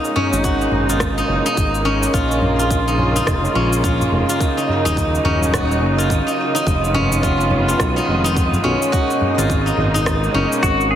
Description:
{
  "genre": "organic downtempo",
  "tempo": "106 BPM",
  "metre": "4/4",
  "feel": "swing 60% on 16ths",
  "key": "unclear",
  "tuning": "A4 = 440 Hz",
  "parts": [
    { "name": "muted studio string section", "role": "sustained chords", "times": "0.0-11.0 s", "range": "Cb3 to F4", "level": "-22 LUFS", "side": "equal", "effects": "sidechain pumping" },
    { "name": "steel-string zither", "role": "arpeggios", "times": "0.0-11.0 s", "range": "Db4 to Gb4", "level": "-20 LUFS", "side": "left 1 dB", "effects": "digital delay" },
    { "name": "electronic cabasa and rim click", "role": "drums", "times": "0.0-10.9 s", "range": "none", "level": "-26 LUFS", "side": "equal", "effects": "none" },
    { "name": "tabla", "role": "percussion", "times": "0.0-10.9 s", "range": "none", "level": "-27 LUFS", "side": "equal", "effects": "none" },
    { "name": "wind-like tuned noise texture", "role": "texture", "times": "0.0-11.0 s", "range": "Eb5", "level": "-27 LUFS", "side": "right 6 dB", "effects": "built-in reverb" },
    { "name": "smooth synth bass", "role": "bass", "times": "0.3-11.0 s", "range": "Eb1 to Cb2", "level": "-20 LUFS", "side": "equal", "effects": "tube saturation" },
    { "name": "electronic kick drum", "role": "drums", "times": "0.4-10.8 s", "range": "none", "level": "-21 LUFS", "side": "equal", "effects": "none" },
    { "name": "clean lap steel guitar", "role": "melody", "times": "10.6-11.0 s", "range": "Gb4 to Ab4", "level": "-17 LUFS", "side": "left 3 dB", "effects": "none" }
  ],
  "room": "moderate echo chamber reverb, RT60 2.2 s",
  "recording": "heavily compressed radio sound",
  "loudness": "-15 LUFS",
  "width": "side -10 dB against mid",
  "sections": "0.0-11.0 A section",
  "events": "none",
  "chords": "0.0 Abmadd9; 2.1 Bbm7; 4.4 Ebm7; 6.7 Fm7b5; 8.9 Abmadd9",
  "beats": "0.44 1.00 1.57 | 2.14 2.70 3.27 3.84 | 4.40 4.97 5.53 6.10 | 6.67 7.23 7.80 8.36 | 8.93 9.50 10.06 10.63"
}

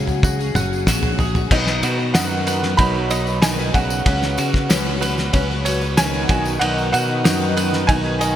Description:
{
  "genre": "indie folk with a building arrangement",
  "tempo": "94 BPM",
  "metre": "4/4",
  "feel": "straight",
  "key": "B major",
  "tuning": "A4 = 442 Hz",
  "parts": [
    { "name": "clear upright piano", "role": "melody", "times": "0.0-8.4 s", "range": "F#5 to B5", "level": "-24 LUFS", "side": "right 1 dB", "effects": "digital delay" },
    { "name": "warm trombone", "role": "second line", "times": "0.0-8.4 s", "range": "C#3 to F#3", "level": "-28 LUFS", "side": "right 4 dB", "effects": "digital delay" },
    { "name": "picked plugged-in twelve-string acoustic guitar", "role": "accompaniment", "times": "0.0-8.4 s", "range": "B2 to B4", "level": "-28 LUFS", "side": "left 5 dB", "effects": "ensemble chorus" },
    { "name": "bluegrass banjo", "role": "arpeggios", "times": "0.0-8.4 s", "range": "C#4 to F#5", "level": "-27 LUFS", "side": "right 5 dB", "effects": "none" },
    { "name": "fingered electric bass", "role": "bass", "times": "0.0-8.4 s", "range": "F#1 to C#3", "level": "-23 LUFS", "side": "equal", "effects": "none" },
    { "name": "cloth-damped thuddy drum kit", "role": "drums", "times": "0.1-8.4 s", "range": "crash cymbal, kick drum, ride cymbal, snare drum, toms", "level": "-20 LUFS", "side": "equal", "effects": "gated reverb" },
    { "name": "tambourine", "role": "percussion", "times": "0.1-8.4 s", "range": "none", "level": "-32 LUFS", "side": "left 5 dB", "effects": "none" },
    { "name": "clear baby grand piano", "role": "accompaniment", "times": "1.5-8.4 s", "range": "B1 to D#5", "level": "-31 LUFS", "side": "left 3 dB", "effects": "none" },
    { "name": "hand-pumped harmonium", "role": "sustained chords", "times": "1.5-8.4 s", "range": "B2 to F#4", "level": "-32 LUFS", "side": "left 1 dB", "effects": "none" }
  ],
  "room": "moderate lush hall reverb, RT60 3.3 s",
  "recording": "bright 1980s-style digital production",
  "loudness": "-16 LUFS",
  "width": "side -11 dB against mid",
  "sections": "0.0-1.5 A section; 1.5-8.4 B section",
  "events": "none",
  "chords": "0.0 F#sus2; 1.5 B; 4.1 F#sus4/C#; 6.3 B",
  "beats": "0.23 0.87 | 1.51 2.14 2.78 3.42 | 4.06 4.70 5.34 5.97 | 6.61 7.25 7.89"
}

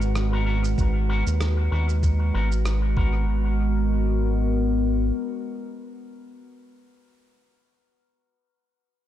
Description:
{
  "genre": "ambient dub",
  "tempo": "96 BPM",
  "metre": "4/4",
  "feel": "swing 56% on 16ths",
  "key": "G# minor",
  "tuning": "A4 = 441 Hz",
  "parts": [
    { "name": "warbly tape-like pad", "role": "sustained chords", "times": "0.0-6.5 s", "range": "G#3 to A#5", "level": "-28 LUFS", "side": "equal", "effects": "chorus, built-in reverb" },
    { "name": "round analog bass", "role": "bass", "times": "0.0-5.1 s", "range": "G#1 to D#2", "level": "-22 LUFS", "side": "equal", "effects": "none" },
    { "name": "electronic cabasa and rim click", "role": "drums", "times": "0.0-2.8 s", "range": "none", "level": "-37 LUFS", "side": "equal", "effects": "dub echo" },
    { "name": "wind-like tuned noise texture", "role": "texture", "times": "0.0-3.3 s", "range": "F#4", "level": "-46 LUFS", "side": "right 1 dB", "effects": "none" },
    { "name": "electric guitar with an envelope filter", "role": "stabs", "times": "0.3-7.2 s", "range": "B3 to A#4", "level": "-35 LUFS", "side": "left 4 dB", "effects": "dub echo" },
    { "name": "electronic kick drum", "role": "drums", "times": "0.8-3.1 s", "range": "none", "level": "-23 LUFS", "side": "equal", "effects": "none" }
  ],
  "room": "light reverb, digital ambience",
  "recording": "dark, warm production",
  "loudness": "-21 LUFS",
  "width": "side -12 dB against mid",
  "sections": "0.0-3.3 A section; 3.3-5.8 B section",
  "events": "none",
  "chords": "0.0 G#m9",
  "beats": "0.16 | 0.78 1.41 2.03 2.66 | 3.28 3.91 4.53 5.16"
}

